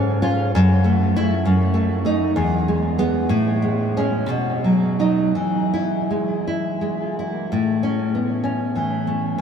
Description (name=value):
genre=romantic piece for solo classical guitar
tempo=54-68 BPM (dotted quarters)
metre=6/8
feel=rubato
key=E major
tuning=A4 = 440 Hz
part: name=nylon-string guitar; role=solo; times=0.0-9.4 s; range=E2 to E#4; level=-18 LUFS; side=equal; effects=lush chorus, tape echo
room=wet huge ambient reverb, RT60 8.3 s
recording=dreamy mix soaked in reverb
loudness=-18 LUFS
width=side -7 dB against mid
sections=0.0-7.5 A section; 7.5-9.4 B section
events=none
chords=0.0 C#/G#; 0.5 F#m7; 1.5 F#m6; 2.4 E; 3.3 Amaj7; 4.3 B; 5.4 E; 7.5 A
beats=0.54 | 1.46 2.38 | 3.32 4.29 | 5.36 6.45 | 7.50 8.43 | 9.35